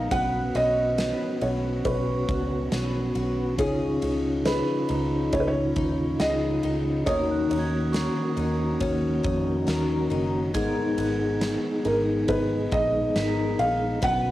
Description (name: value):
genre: dream pop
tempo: 69 BPM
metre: 4/4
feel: straight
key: unclear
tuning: A4 = 441 Hz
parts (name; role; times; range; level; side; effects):
- felt-muted upright piano; melody; 0.0-14.3 s; Ab4 to Gb5; -27 LUFS; right 1 dB; tape echo
- mellow tonewheel organ; sustained chords; 0.0-14.3 s; Db3 to Ab4; -27 LUFS; equal; fast rotary speaker, cassette tape
- picked twelve-string acoustic guitar; arpeggios; 0.0-14.3 s; Ab2 to Cb5; -32 LUFS; left 6 dB; analog chorus, cassette tape, tape echo
- vintage muted picked electric bass; bass; 0.0-14.3 s; Gb1 to F2; -30 LUFS; right 1 dB; none
- glockenspiel with rubber mallets; texture; 0.0-14.3 s; Cb6 to Cb7; -39 LUFS; right 6 dB; cassette tape, tape echo
- huge arena drum kit; drums; 0.1-14.2 s; kick drum, ride cymbal, snare drum, tambourine; -32 LUFS; equal; none
room: wet studio reverb, RT60 0.6 s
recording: home recording on cassette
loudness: -22 LUFS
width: side -15 dB against mid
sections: 0.0-14.3 A section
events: none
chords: 0.1 Cbsus2; 3.6 Dbadd9; 7.1 Ebm7; 10.5 Abmadd9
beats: | 0.11 0.98 1.85 2.72 | 3.59 4.46 5.33 6.20 | 7.07 7.94 8.81 9.68 | 10.55 11.42 12.29 13.16 | 14.03